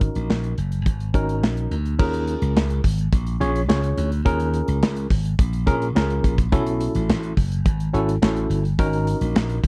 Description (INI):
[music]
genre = early-eighties boogie funk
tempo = 106 BPM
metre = 4/4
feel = straight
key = Eb minor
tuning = A4 = 440 Hz
[part]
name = tine electric piano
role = accompaniment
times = 0.0-9.6 s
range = Db4 to Db5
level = -27 LUFS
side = equal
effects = overdrive
[part]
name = slap bass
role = bass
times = 0.0-9.7 s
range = Gb1 to Eb2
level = -25 LUFS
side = equal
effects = none
[part]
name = modern studio drum kit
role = drums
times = 0.0-9.7 s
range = crash cymbal, handclaps, hi-hat, kick drum, snare drum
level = -23 LUFS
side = equal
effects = none
[sound]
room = little or no reverb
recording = dry, close 1970s-style studio recording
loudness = -22 LUFS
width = mono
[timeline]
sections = 0.0-2.0 A section; 2.0-9.7 B section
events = none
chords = 0.0 Ab9sus4; 2.0 Eb9sus4; 6.5 B9sus4; 8.8 Ab9sus4